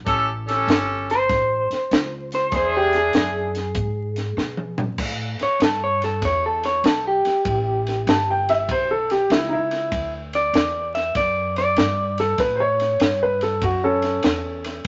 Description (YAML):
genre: electric blues shuffle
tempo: 97 BPM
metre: 4/4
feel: swing 67% on 8ths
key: A mixolydian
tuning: A4 = 440 Hz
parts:
  - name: upright bass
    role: bass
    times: 0.0-14.9 s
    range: G1 to B2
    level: -32 LUFS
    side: equal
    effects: none
  - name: clear horn section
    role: stabs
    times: 0.1-3.6 s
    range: C#4 to A4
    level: -24 LUFS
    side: equal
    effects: none
  - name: compact cocktail drum kit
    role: drums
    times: 0.1-14.9 s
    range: crash cymbal, hi-hat, kick drum, ride cymbal, snare drum, toms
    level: -26 LUFS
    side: equal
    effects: none
  - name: electric guitar through a small old amp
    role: melody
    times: 1.1-12.2 s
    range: G4 to E5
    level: -24 LUFS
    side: equal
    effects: none
  - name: warm upright piano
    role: second line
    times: 8.1-14.9 s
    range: C#4 to A5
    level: -22 LUFS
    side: equal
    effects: none
room: moderate studio reverb, RT60 0.7 s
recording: vinyl crackle, nothing above 7.7 kHz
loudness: -21 LUFS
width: mono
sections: 0.0-5.0 A section; 5.0-14.9 B section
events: clean electric guitar solo 0.0-5.0; drum fill 4.4-5.0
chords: 0.1 A7; 2.5 E7; 5.0 A7; 9.9 D; 12.4 A7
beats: | 0.06 0.68 1.29 1.91 | 2.53 3.14 3.76 4.37 | 4.99 5.61 6.22 6.84 | 7.45 8.07 8.69 9.30 | 9.92 10.54 11.15 11.77 | 12.38 13.00 13.62 14.23 | 14.85